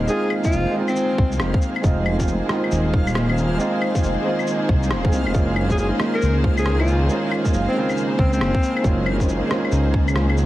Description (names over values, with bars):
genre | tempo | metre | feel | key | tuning
future garage | 137 BPM | 4/4 | swing 64% on 16ths | F minor | A4 = 440 Hz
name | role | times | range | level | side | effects
felt-muted upright piano | accompaniment | 0.0-10.5 s | Db3 to Ab4 | -24 LUFS | right 3 dB | sidechain pumping, analog delay
warm studio string section | sustained chords | 0.0-10.5 s | Eb3 to C5 | -26 LUFS | left 2 dB | vintage 12-bit sampler grit, sidechain pumping
swelling detuned saw bass | bass | 0.0-10.5 s | Eb1 to Db2 | -21 LUFS | equal | sidechain pumping
backwards swelling texture | texture | 0.0-10.5 s | F5 | -35 LUFS | equal | built-in reverb
breathy alto saxophone | melody | 0.1-1.3, 5.7-8.9 s | C4 to Bb4 | -25 LUFS | left 1 dB | vintage 12-bit sampler grit, analog delay
electronic shaker, claves and rim click | drums | 0.1-10.5 s | none | -28 LUFS | left 2 dB | none
electronic kick drum | drums | 0.4-10.1 s | none | -20 LUFS | equal | none
room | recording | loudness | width
light reverb, digital ambience | heavily compressed radio sound, vinyl crackle | -18 LUFS | side -15 dB against mid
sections
0.0-10.5 A section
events
none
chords
0.0 Fm7; 5.3 Gbmaj7